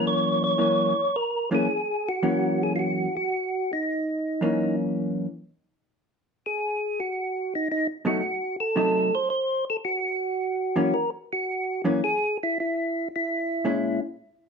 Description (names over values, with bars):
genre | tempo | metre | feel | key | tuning
jazz | 110 BPM | 4/4 | swing 69% on 8ths | F# mixolydian | A4 = 444 Hz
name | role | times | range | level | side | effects
percussive tonewheel organ | melody | 0.0-14.0 s | D#4 to C#5 | -25 LUFS | right 1 dB | slow rotary speaker, plate reverb
vintage hollow-body jazz guitar | accompaniment | 0.0-14.0 s | F#2 to E4 | -24 LUFS | left 1 dB | none
room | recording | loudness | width
wet studio reverb, RT60 0.6 s | dark, warm production | -23 LUFS | side -5 dB against mid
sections
0.0-14.5 A section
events
none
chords
0.0 F#7; 6.6 B7; 8.8 Cdim7; 10.9 F#7; 13.1 A#m7b5